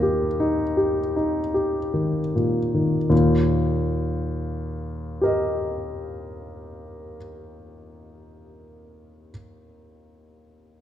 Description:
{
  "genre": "classical, romantic nocturne for solo piano",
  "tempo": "24-29 BPM (dotted quarters)",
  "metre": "12/8",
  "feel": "rubato",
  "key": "Eb major",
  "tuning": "A4 = 440 Hz",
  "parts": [
    { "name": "warm concert grand piano", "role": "solo", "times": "0.0-10.8 s", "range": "Eb2 to Eb5", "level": "-22 LUFS", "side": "left 1 dB", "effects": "none" }
  ],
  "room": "moderate scoring stage reverb, RT60 1.7 s",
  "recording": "dark, warm production",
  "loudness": "-21 LUFS",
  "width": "side -10 dB against mid",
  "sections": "0.0-3.1 A section; 3.1-10.8 B section",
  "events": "slowing down 0.0-3.1",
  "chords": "0.0 Eb"
}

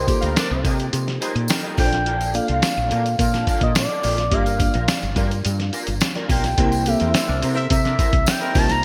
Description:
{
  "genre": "polished 1980s jazz-funk pop",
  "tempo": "106 BPM",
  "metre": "4/4",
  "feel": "straight",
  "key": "unclear",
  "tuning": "A4 = 440 Hz",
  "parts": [
    { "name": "expressive synth lead", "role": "melody", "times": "0.0-8.8 s", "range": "C5 to Bb5", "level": "-26 LUFS", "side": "equal", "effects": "chorus" },
    { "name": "bell-like FM electric piano", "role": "accompaniment", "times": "0.0-8.8 s", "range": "Bb3 to F5", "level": "-30 LUFS", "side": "equal", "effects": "lush chorus" },
    { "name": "electric guitar through a small old amp", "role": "riff", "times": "0.0-8.7 s", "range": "C4 to F5", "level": "-32 LUFS", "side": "equal", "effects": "ensemble chorus" },
    { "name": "woody fretless electric bass", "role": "bass", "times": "0.0-8.8 s", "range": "G1 to C3", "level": "-25 LUFS", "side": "equal", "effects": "analog chorus" },
    { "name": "mellow horn section", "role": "second line", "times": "0.1-1.7, 6.9-8.6 s", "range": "Eb3 to E5", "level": "-33 LUFS", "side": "equal", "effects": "delay" },
    { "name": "lo-fi sampler-style drum kit", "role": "drums", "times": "0.1-8.8 s", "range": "hi-hat, kick drum, snare drum", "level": "-24 LUFS", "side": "equal", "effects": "gated reverb" },
    { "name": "tambourine", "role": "percussion", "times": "0.1-8.8 s", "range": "none", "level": "-36 LUFS", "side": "equal", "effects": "none" }
  ],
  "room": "moderate plate reverb, RT60 2.8 s",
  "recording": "bright 1980s-style digital production",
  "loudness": "-20 LUFS",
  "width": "mono",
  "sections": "0.0-8.8 A section",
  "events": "none",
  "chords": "0.0 F9sus4/C; 1.8 Bbmaj7; 4.3 Gm7; 6.6 C7"
}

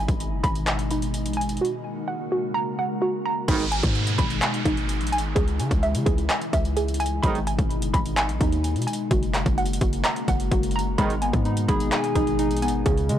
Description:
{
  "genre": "hip hop, trap",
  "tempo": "128 BPM",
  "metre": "4/4",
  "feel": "half-time",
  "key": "G# minor",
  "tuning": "A4 = 439 Hz",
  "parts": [
    { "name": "glassy FM pad", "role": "sustained chords", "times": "0.0-13.2 s", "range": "B2 to F#4", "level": "-30 LUFS", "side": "left 2 dB", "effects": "ensemble chorus, built-in reverb" },
    { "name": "hollow square pluck", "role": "arpeggios", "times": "0.0-13.2 s", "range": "D#4 to B5", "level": "-28 LUFS", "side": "right 2 dB", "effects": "chorus, tape echo" },
    { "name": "hard-hitting 808-style bass", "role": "bass", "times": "0.0-13.2 s", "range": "F#1 to C#3", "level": "-26 LUFS", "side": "equal", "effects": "none" },
    { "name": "trap drum kit", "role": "drums", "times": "0.1-13.2 s", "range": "crash cymbal, handclaps, hi-hat, kick drum", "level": "-25 LUFS", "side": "equal", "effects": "overdrive" },
    { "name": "warm brass ensemble", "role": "stabs", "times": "3.5-3.6, 7.2-7.4, 11.0-11.1 s", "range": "B1 to D#3", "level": "-30 LUFS", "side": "right 5 dB", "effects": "none" },
    { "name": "downlifter", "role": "sound effects", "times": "3.5-7.2 s", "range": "none", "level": "-32 LUFS", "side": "right 3 dB", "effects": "none" },
    { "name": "warbly lo-fi synth keys", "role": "accompaniment", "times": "11.0-13.2 s", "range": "C#3 to G#5", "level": "-25 LUFS", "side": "left 2 dB", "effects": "chorus" }
  ],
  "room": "little or no reverb",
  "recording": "blown-out, overdriven recording, overdrive",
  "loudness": "-21 LUFS",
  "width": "side -11 dB against mid",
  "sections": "0.0-3.5 A section; 3.5-13.2 B section",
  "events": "none",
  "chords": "0.0 G#m; 1.6 F#add9; 3.5 G#m; 5.4 C#m; 7.2 G#m; 9.1 F#add9; 11.0 G#m"
}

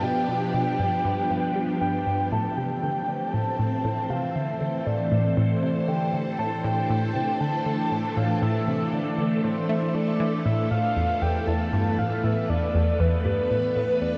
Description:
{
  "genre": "ambient, sequencer-driven space music",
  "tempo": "118 BPM",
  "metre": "4/4",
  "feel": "straight",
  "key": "A minor",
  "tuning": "A4 = 442 Hz",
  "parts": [
    { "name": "soft octave-layered synth lead", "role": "melody", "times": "0.0-14.2 s", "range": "B4 to A5", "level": "-30 LUFS", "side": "equal", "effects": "chorus, shimmer reverb, tape echo" },
    { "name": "phased string machine", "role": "sustained chords", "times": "0.0-14.2 s", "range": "E3 to C5", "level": "-30 LUFS", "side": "equal", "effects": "ensemble chorus, phaser, shimmer reverb" },
    { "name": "analog pluck", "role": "riff", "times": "0.0-14.1 s", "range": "E2 to A3", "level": "-29 LUFS", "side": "equal", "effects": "chorus, phaser, tape echo" }
  ],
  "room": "wet huge ambient reverb, RT60 6.9 s",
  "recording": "dark, warm production",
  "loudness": "-25 LUFS",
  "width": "mono",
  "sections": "0.0-14.2 A section",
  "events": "none",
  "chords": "0.0 G7; 2.3 Am; 10.5 Esus4"
}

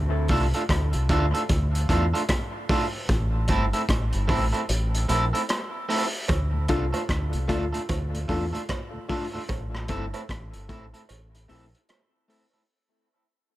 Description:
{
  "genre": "dub reggae",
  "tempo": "75 BPM",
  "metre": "4/4",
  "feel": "swing 61% on 16ths",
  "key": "D minor",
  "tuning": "A4 = 440 Hz",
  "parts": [
    { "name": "deep dub fingered electric bass", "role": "bass", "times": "0.0-11.7 s", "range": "G1 to E2", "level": "-25 LUFS", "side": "equal", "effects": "none" },
    { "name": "electric guitar at the edge of break-up", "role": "accompaniment", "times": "0.3-12.6 s", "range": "A3 to A4", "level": "-29 LUFS", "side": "right 2 dB", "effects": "dub echo" },
    { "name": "crunchy breakbeat drum kit", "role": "drums", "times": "0.3-12.5 s", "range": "hi-hat, kick drum, rim click", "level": "-28 LUFS", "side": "equal", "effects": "none" },
    { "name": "cowbell", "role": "percussion", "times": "6.3-12.1 s", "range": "none", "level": "-39 LUFS", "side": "right 7 dB", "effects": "dub echo" },
    { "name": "mellow tonewheel organ", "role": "accompaniment", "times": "6.5-9.4 s", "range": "D2 to F4", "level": "-39 LUFS", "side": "left 2 dB", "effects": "none" },
    { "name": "barky reed electric piano", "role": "stabs", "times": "6.7-12.5 s", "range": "A3 to A4", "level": "-35 LUFS", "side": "left 3 dB", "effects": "overdrive, fast tremolo, dub echo" }
  ],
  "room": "little or no reverb",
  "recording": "echo-heavy mix",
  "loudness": "-23 LUFS",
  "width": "side -15 dB against mid",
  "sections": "0.0-6.3 A section; 6.3-12.7 B section",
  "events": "break 0.0-6.3, 9.5-12.7; kick muted 4.7-6.3; fade-out 6.3-12.7",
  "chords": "0.0 Dm; 3.1 Am; 6.3 Dm; 9.5 Am"
}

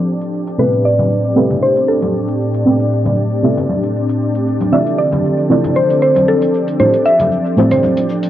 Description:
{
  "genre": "deep house",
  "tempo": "116 BPM",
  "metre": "4/4",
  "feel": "swing 54% on 16ths",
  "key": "A minor",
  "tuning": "A4 = 443 Hz",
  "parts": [
    { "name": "mallet-like synth pluck", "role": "melody", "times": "0.0-8.3 s", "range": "A4 to E5", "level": "-15 LUFS", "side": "equal", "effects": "chorus, cassette tape, analog delay" },
    { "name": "hollow soft pad", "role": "sustained chords", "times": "0.0-8.3 s", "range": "A2 to D5", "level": "-18 LUFS", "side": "equal", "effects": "chorus, cassette tape" },
    { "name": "deep mellow chord stab", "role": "stabs", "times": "0.0-8.3 s", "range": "A3 to G5", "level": "-16 LUFS", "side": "right 1 dB", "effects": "chorus, phaser, vintage 12-bit sampler grit, cassette tape, analog delay" },
    { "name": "ethereal airy pad", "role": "texture", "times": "0.0-8.3 s", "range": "F3 to D5", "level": "-20 LUFS", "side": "equal", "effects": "ensemble chorus, built-in reverb, phaser, cassette tape" },
    { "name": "electronic cabasa and hi-hat", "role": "drums", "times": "0.1-8.3 s", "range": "none", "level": "-43 LUFS", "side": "left 2 dB", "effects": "overdrive, cassette tape" },
    { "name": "congas", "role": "percussion", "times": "1.0-7.9 s", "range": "none", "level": "-21 LUFS", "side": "left 2 dB", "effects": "overdrive, cassette tape" }
  ],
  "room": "light reverb",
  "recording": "home recording on cassette, low-pass filter",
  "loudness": "-12 LUFS",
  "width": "side -12 dB against mid",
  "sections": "0.0-8.3 A section",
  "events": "filter sweep on analog synth pad 0.0-8.3; filter sweep 0.0-8.3",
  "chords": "0.0 Fmaj9; 0.6 Am9; 4.7 Dm9; 6.8 Fmaj9"
}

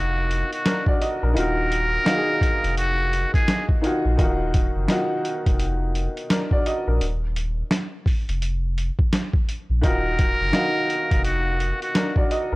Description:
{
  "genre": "hip hop, boom-bap hip-hop",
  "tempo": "85 BPM",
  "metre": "4/4",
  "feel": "swing 62% on 16ths",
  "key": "Eb harmonic minor",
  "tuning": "A4 = 440 Hz",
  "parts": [
    { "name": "trumpet with metal mute", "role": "melody", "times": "0.0-3.7, 9.8-12.1 s", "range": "Gb4 to Bb4", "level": "-25 LUFS", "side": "equal", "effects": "high-pass filter, low-pass filter, analog delay" },
    { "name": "clear upright piano", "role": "accompaniment", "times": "0.0-12.6 s", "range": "Eb3 to F5", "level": "-25 LUFS", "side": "equal", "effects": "cassette tape, high-pass filter, low-pass filter" },
    { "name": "sub bass with octave", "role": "bass", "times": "0.0-12.6 s", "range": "Eb1 to Bb1", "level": "-24 LUFS", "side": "equal", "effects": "none" },
    { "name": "boom bap sampler-style drum kit", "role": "drums", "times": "0.3-12.5 s", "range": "hi-hat, kick drum, snare drum", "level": "-22 LUFS", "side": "equal", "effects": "none" }
  ],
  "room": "little or no reverb",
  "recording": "dry, gritty hardware recording, cassette tape",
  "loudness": "-20 LUFS",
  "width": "side -22 dB against mid",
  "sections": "0.0-12.6 A section",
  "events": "none",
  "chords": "0.0 Ebmadd9; 7.0 Ebsus2; 9.8 Ebmadd9"
}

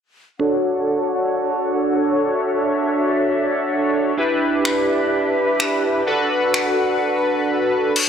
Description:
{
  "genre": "dance-pop",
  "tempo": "127 BPM",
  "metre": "4/4",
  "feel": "straight",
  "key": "D major",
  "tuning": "A4 = 440 Hz",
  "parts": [
    { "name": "chorused polysynth", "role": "accompaniment", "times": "0.4-8.0 s", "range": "D4 to C#5", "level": "-18 LUFS", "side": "equal", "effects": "low-pass filter" },
    { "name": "breathy large flute ensemble", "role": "sustained chords", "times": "0.4-7.9 s", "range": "D4 to F#5", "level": "-24 LUFS", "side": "left 1 dB", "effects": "low-pass filter" },
    { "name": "smooth R&B drum kit", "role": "drums", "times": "4.7-8.1 s", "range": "crash cymbal, finger snaps", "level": "-22 LUFS", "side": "left 2 dB", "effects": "none" }
  ],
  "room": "moderate lush hall reverb, RT60 2.2 s",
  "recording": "dry, gritty hardware recording",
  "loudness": "-17 LUFS",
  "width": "side -8 dB against mid",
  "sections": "0.4-8.0 A section",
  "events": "filter sweep 0.4-8.0",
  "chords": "0.4 Dmaj7; 4.2 G6; 6.1 Bm7"
}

